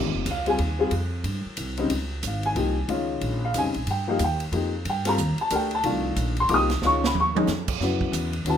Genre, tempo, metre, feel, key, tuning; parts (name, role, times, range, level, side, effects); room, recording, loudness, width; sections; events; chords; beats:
modal jazz; 183 BPM; 3/4; swing 62% on 8ths; Bb dorian; A4 = 440 Hz
warm upright piano; accompaniment; 0.0-8.6 s; B#2 to Eb6; -24 LUFS; left 2 dB
upright bass; bass; 0.0-8.6 s; F1 to G2; -27 LUFS; right 1 dB
swinging big-band drum kit; drums; 0.3-8.6 s; crash cymbal, hi-hat, kick drum, ride cymbal, snare drum, toms; -31 LUFS; right 4 dB
moderate studio reverb, RT60 0.7 s; minimal, uncompressed stereo recording; -22 LUFS; side -9 dB against mid
0.0-7.8 A section
drum fill 6.8-7.5
0.0 Bbm9; 3.9 Cm9; 6.8 Db; 7.8 F#7(no3)
0.26 0.59 | 0.92 1.25 1.57 | 1.90 2.23 2.56 | 2.89 3.22 3.54 | 3.87 4.20 4.53 | 4.86 5.18 5.51 | 5.84 6.17 6.50 | 6.82 7.15 7.48 | 7.80 8.13 8.46